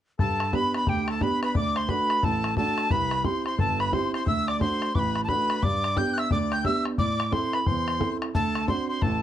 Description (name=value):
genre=celtic folk, Celtic hornpipe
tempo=177 BPM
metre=4/4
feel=swing 62% on 8ths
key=G major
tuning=A4 = 440 Hz
part: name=breathy bright tin whistle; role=melody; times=0.2-9.2 s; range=G5 to G6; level=-28 LUFS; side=equal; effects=none
part: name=accordion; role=second line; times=0.2-9.2 s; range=G4 to G5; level=-32 LUFS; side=left 4 dB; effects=none
part: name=warm baby grand piano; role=accompaniment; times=0.2-9.2 s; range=G1 to A4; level=-28 LUFS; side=right 4 dB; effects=none
part: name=bodhran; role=percussion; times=0.2-9.1 s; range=none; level=-29 LUFS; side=left 2 dB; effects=none
room=light reverb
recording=dark, warm production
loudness=-23 LUFS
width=side -11 dB against mid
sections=0.2-9.2 A section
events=none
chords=0.2 G; 1.6 D; 2.9 C; 4.3 D; 5.6 G; 7.0 Am; 8.3 D7